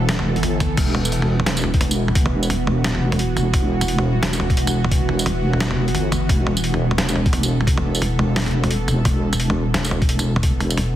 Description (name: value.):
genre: half-time drum and bass.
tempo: 174 BPM.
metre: 4/4.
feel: swing 60% on 16ths, half-time.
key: unclear.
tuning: A4 = 440 Hz.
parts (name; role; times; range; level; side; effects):
bowed-like drone; sustained chords; 0.0-11.0 s; E3 to A4; -25 LUFS; right 2 dB; built-in reverb, sidechain pumping.
deep soft wobble bass; bass; 0.0-11.0 s; E1 to G1; -20 LUFS; equal; chorus.
boom bap sampler-style drum kit; drums; 0.1-10.9 s; crash cymbal, hi-hat, snare drum, tambourine, toms; -23 LUFS; equal; studio reverb.
electronic kick drum; drums; 0.6-10.5 s; none; -20 LUFS; equal; studio reverb.
room: light reverb, digital ambience.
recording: heavily compressed radio sound, multiband compression.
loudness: -17 LUFS.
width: side -12 dB against mid.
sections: 0.0-11.0 A section.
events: none.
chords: 0.0 E5.